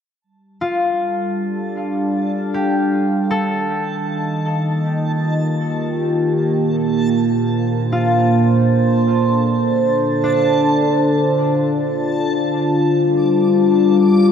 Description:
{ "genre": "ambient", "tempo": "free time", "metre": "none", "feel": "none", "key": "G minor", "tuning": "A4 = 440 Hz", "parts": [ { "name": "evolving wavetable pad", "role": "sustained chords", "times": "1.0-14.3 s", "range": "Bb2 to F5", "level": "-16 LUFS", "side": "equal", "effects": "chorus, built-in reverb" }, { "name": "backwards swelling texture", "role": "texture", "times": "1.1-14.3 s", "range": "A5 to D6", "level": "-28 LUFS", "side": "equal", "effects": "built-in reverb" }, { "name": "concert harp", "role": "arpeggios", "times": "0.6-13.0 s", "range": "D4 to A4", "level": "-23 LUFS", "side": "left 2 dB", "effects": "diffuse ambient delay" } ], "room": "wet lush hall reverb, RT60 2.9 s", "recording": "dark, warm production", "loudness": "-15 LUFS", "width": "side -7 dB against mid", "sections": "0.2-14.3 A section", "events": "fade-in on synth texture 0.2-14.3", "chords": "0.2 G5; 3.3 Ebadd9; 6.4 Bbmaj7; 9.5 Dm7; 12.5 Gm7" }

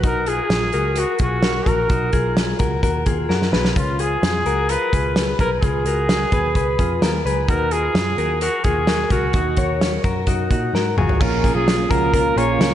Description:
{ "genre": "jangly indie pop", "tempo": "129 BPM", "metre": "4/4", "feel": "straight", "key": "unclear", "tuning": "A4 = 439 Hz", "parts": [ { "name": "clear trumpet", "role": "melody", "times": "0.0-12.7 s", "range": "E#4 to C#5", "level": "-22 LUFS", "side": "right 1 dB", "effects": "slapback echo" }, { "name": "direct-recorded clean electric guitar", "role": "arpeggios", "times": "0.0-12.7 s", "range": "C#4 to C#5", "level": "-23 LUFS", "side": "left 3 dB", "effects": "spring reverb, slapback echo" }, { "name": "vintage muted picked electric bass", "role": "bass", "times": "0.0-12.7 s", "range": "G#1 to A#2", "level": "-24 LUFS", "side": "equal", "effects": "none" }, { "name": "loose indie drum kit", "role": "drums", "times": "0.0-12.7 s", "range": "crash cymbal, hi-hat, kick drum, snare drum, toms", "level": "-21 LUFS", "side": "equal", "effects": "none" }, { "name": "fingerpicked plugged-in steel-string acoustic guitar", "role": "accompaniment", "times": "11.2-12.7 s", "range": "A#2 to E#4", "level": "-22 LUFS", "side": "right 6 dB", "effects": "slapback echo" } ], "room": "wet lush hall reverb, RT60 1.9 s, studio ambience", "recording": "big arena sound, nothing above 10.8 kHz", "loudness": "-16 LUFS", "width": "side -11 dB against mid", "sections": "0.0-11.2 A section; 11.2-12.7 B section", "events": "drum fill 3.3-3.8, 10.7-11.2", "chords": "0.0 Bmaj7; 3.8 C#7; 7.5 D#m7; 11.2 A#m" }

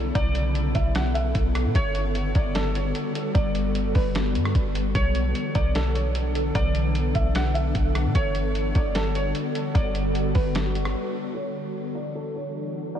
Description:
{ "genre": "hip hop, atmospheric cloud-rap", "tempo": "150 BPM", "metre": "4/4", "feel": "half-time", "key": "B minor", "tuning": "A4 = 443 Hz", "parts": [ { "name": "ethereal airy pad", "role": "sustained chords", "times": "0.0-13.0 s", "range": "C#3 to A4", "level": "-28 LUFS", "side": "left 1 dB", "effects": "ensemble chorus, built-in reverb, sidechain pumping, low-pass filter" }, { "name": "warm 808-style bass", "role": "bass", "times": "0.0-11.0 s", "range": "G1 to B2", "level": "-25 LUFS", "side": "equal", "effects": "none" }, { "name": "felt-muted upright piano", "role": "melody", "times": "0.2-13.0 s", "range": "A4 to F#5", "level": "-31 LUFS", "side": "right 1 dB", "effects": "analog chorus, low-pass filter, tape echo" }, { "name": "lo-fi sampler-style drum kit", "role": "drums", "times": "0.2-10.9 s", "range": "hi-hat, kick drum, rim click, snare drum", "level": "-27 LUFS", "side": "equal", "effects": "none" } ], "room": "light reverb", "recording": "none", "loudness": "-22 LUFS", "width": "side -9 dB against mid", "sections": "0.0-11.4 A section; 11.4-13.0 B section", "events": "break 11.0-11.4; filter sweep 11.4-13.0", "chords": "0.0 Bm11; 1.8 Gmaj9; 5.0 Bm11; 8.2 Gmaj9; 11.4 Bm11" }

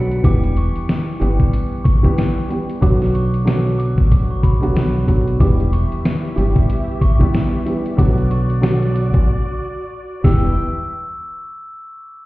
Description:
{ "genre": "hip hop, boom-bap hip-hop", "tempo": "93 BPM", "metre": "4/4", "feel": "swing 58% on 16ths", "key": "E dorian", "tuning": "A4 = 440 Hz", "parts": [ { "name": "glockenspiel with soft plastic mallets", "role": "melody", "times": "0.0-10.5 s", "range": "B5 to B6", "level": "-31 LUFS", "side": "left 1 dB", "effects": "high-pass filter, low-pass filter, tape echo" }, { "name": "dark upright piano", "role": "accompaniment", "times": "0.0-10.5 s", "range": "D3 to G4", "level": "-21 LUFS", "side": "right 2 dB", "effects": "cassette tape, high-pass filter, low-pass filter" }, { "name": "dark studio string section", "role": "sustained chords", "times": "0.0-0.2, 5.4-10.5 s", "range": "E3 to B5", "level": "-31 LUFS", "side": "left 1 dB", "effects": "high-pass filter, low-pass filter" }, { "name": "deep dub fingered electric bass", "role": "bass", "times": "0.0-10.5 s", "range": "E1 to B1", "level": "-17 LUFS", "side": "equal", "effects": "none" }, { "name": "dusty soul sampler-style drum kit", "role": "drums", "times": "0.1-10.4 s", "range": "hi-hat, kick drum, snare drum", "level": "-15 LUFS", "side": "equal", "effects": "none" } ], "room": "light reverb", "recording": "heard muffled through a wall, stone room reverb, EQ", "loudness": "-14 LUFS", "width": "side -19 dB against mid", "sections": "0.2-10.6 A section; 10.6-12.3 B section", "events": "break 9.3-10.6", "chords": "0.2 Em; 2.8 Bm; 5.4 Em; 8.0 Bm; 10.2 Em; 10.6 N.C." }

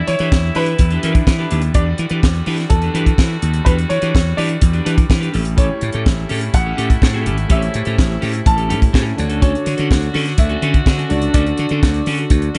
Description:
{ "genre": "disco", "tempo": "125 BPM", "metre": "4/4", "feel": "straight", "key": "E dorian", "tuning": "A4 = 440 Hz", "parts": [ { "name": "warm baby grand piano", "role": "melody", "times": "0.0-12.6 s", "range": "A4 to A5", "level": "-27 LUFS", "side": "equal", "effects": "none" }, { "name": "muted French horn section", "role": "sustained chords", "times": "0.0-12.6 s", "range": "C#3 to F#4", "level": "-30 LUFS", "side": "equal", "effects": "none" }, { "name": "clean electric guitar", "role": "accompaniment", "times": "0.1-12.6 s", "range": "C#4 to B4", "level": "-28 LUFS", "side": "equal", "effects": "none" }, { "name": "slap bass", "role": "bass", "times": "0.1-12.6 s", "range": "G#1 to E3", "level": "-21 LUFS", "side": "equal", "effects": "none" }, { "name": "tight funk drum kit", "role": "drums", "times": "0.1-12.6 s", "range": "hi-hat, kick drum, snare drum", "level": "-18 LUFS", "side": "equal", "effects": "none" }, { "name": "barky tine electric piano", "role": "accompaniment", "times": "5.6-12.6 s", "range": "D3 to D5", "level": "-27 LUFS", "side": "equal", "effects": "overdrive, subtle chorus" } ], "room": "little or no reverb", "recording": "nothing above 10.9 kHz", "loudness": "-16 LUFS", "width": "mono", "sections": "0.0-12.6 A section", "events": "none", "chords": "0.0 Em7; 5.3 A7; 9.2 Dmaj7" }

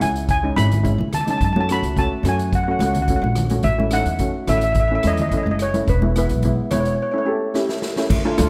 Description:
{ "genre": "calypso", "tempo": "107 BPM", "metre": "4/4", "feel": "straight", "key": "unclear", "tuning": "A4 = 438 Hz", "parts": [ { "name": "steel pan", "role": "melody", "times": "0.0-7.2 s", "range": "B4 to B5", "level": "-26 LUFS", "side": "equal", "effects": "none" }, { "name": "steel pan", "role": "accompaniment", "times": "0.0-8.5 s", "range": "G#3 to G4", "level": "-26 LUFS", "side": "equal", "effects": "none" }, { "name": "upright bass", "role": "bass", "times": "0.0-8.5 s", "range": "E1 to C#3", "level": "-24 LUFS", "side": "equal", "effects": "none" }, { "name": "street-band drum kit", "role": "drums", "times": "0.0-8.5 s", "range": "crash cymbal, hi-hat, kick drum, rim click, snare drum", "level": "-28 LUFS", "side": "equal", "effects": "none" }, { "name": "congas", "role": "percussion", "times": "0.0-8.5 s", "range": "none", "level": "-28 LUFS", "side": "equal", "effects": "none" }, { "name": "felt-muted upright piano", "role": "second line", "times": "7.3-8.1 s", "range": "G4 to A4", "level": "-29 LUFS", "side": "equal", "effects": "none" } ], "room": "light reverb, small room ambience", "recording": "rough home demo mix", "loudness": "-20 LUFS", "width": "mono", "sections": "0.0-8.1 A section", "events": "break 7.0-8.1; drum fill 7.6-8.1", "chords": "0.0 C#madd9; 1.4 F#m; 3.6 A; 5.9 E; 7.0 A7" }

